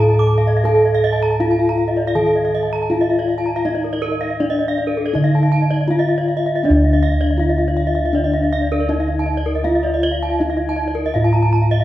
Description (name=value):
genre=Balinese gamelan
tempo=80 BPM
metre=4/4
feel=straight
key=D pelog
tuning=A4 = 440 Hz
part: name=gamelan-type bronze metallophone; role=melody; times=0.0-11.8 s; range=D4 to A4-30c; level=-20 LUFS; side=left 2 dB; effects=none
part: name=gamelan-type bronze metallophone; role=arpeggios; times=0.0-11.8 s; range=Bb4-20c to D6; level=-23 LUFS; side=right 3 dB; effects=none
part: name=gamelan-type bossed gongs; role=bass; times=0.0-11.8 s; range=D2 to A4-30c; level=-18 LUFS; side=equal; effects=none
part: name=gamelan-type bronze metallophone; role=arpeggios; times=0.1-11.8 s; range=A4-30c to Bb5-20c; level=-25 LUFS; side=left 4 dB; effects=none
room=wet recital hall reverb, RT60 1.6 s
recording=heard from further back in the room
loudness=-15 LUFS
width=side -14 dB against mid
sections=0.0-11.8 A section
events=none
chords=none